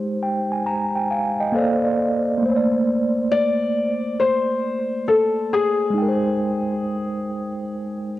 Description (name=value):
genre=hip hop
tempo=68 BPM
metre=4/4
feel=swing 66% on 16ths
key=Bb major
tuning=A4 = 440 Hz
part: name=mellow tine electric piano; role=accompaniment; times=0.0-8.2 s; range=Ab3 to Bb5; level=-21 LUFS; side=right 1 dB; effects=medium stereo tremolo, cassette tape
part: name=felt-muted upright piano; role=melody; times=3.3-8.1 s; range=Ab4 to D5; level=-21 LUFS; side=left 3 dB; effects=analog delay
room=moderate lush hall reverb, RT60 2.4 s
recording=home recording on cassette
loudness=-19 LUFS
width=side -15 dB against mid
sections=0.0-2.4 A section; 2.4-8.2 B section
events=tine electric piano fill 0.0-2.4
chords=0.0 Abmaj7; 1.5 Bbmaj9; 6.0 Abmaj7